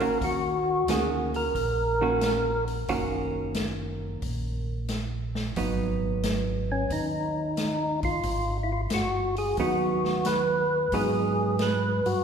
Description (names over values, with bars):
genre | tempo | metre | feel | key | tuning
soul jazz organ trio | 90 BPM | 4/4 | swing 69% on 8ths | unclear | A4 = 437 Hz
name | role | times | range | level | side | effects
percussive tonewheel organ | melody | 0.0-2.6, 6.7-12.2 s | Db4 to Cb5 | -26 LUFS | equal | slow rotary speaker, overdrive
vintage hollow-body jazz guitar | accompaniment | 0.0-12.2 s | Eb3 to Gb4 | -30 LUFS | right 4 dB | none
mellow tonewheel organ | bass | 0.0-12.2 s | Gb1 to Ab2 | -32 LUFS | equal | slow rotary speaker
swinging big-band drum kit | drums | 0.0-12.2 s | hi-hat, kick drum, snare drum | -34 LUFS | left 1 dB | none
room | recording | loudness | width
wet concert hall reverb, RT60 2.0 s | recorded in a church or concert hall | -24 LUFS | side -7 dB against mid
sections
0.0-12.2 A section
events
none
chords
0.0 Ebm7; 5.6 Abm7